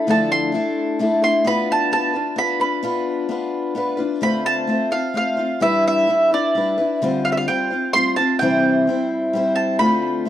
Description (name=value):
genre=folk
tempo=129 BPM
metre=3/4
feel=straight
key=unclear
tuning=A4 = 440 Hz
part: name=mandolin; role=melody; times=0.0-10.3 s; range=D5 to C6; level=-20 LUFS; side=right 2 dB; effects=tape echo
part: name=picked steel-string acoustic guitar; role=accompaniment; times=0.0-10.3 s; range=C3 to C5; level=-19 LUFS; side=left 2 dB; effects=none
room=light reverb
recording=dry, close 1970s-style studio recording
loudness=-17 LUFS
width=side -11 dB against mid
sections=0.0-4.2 A section; 4.2-10.3 B section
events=none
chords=0.0 Dmadd9; 1.5 Bdim; 4.2 Dm7; 5.6 Em7; 7.0 G7sus4/D; 8.4 C